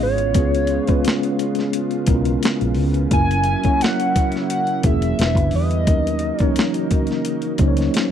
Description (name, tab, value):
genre	R&B, neo-soul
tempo	87 BPM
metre	4/4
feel	straight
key	unclear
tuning	A4 = 442 Hz
part	hollow square lead	melody	0.0-6.9 s	C#5 to G#5	-23 LUFS	equal	chorus
part	mellow tine electric piano	accompaniment	0.0-8.1 s	E3 to C#5	-22 LUFS	left 2 dB	fast stereo tremolo
part	lush unison pad	sustained chords	0.0-8.1 s	C#3 to E#4	-28 LUFS	right 1 dB	chorus
part	vintage muted fingered electric bass	bass	0.0-7.9 s	E1 to E2	-21 LUFS	equal	none
part	boom bap sampler-style drum kit	drums	0.2-8.1 s	hi-hat, kick drum, snare drum	-20 LUFS	equal	none
room	little or no reverb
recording	dry, close 1970s-style studio recording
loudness	-16 LUFS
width	side -9 dB against mid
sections	0.0-8.1 A section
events	none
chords	0.0 C#7; 3.1 F#7; 5.2 Em7; 5.9 D#m7